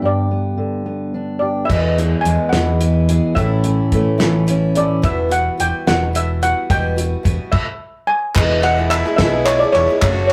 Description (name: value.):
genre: indie folk with a building arrangement.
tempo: 72 BPM (dotted quarters).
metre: 6/8.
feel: straight.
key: unclear.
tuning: A4 = 439 Hz.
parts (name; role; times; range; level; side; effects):
steel pan; melody; 0.0-10.3 s; C#5 to G#5; -21 LUFS; equal; none.
fingerpicked steel-string acoustic guitar; accompaniment; 0.0-6.7 s; E2 to G#4; -22 LUFS; equal; none.
picked old ladder-braced acoustic guitar; accompaniment; 1.7-10.3 s; E2 to G#4; -24 LUFS; equal; none.
fingered electric bass; bass; 1.7-10.3 s; E1 to E2; -23 LUFS; equal; none.
cloth-damped thuddy drum kit; drums; 1.7-10.3 s; crash cymbal, hi-hat, kick drum, ride cymbal, snare drum; -22 LUFS; equal; none.
warm cello; second line; 8.4-10.3 s; E4 to F#4; -26 LUFS; equal; none.
group handclap; percussion; 8.4-10.3 s; none; -27 LUFS; equal; none.
room: wet small room reverb, RT60 0.5 s.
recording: rough rehearsal-room recording.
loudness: -17 LUFS.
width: mono.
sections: 0.0-1.7 A section; 1.7-8.4 B section; 8.4-10.3 C section.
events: none.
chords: 0.0 G; 1.7 E; 3.4 A; 5.0 Emadd9; 8.4 E.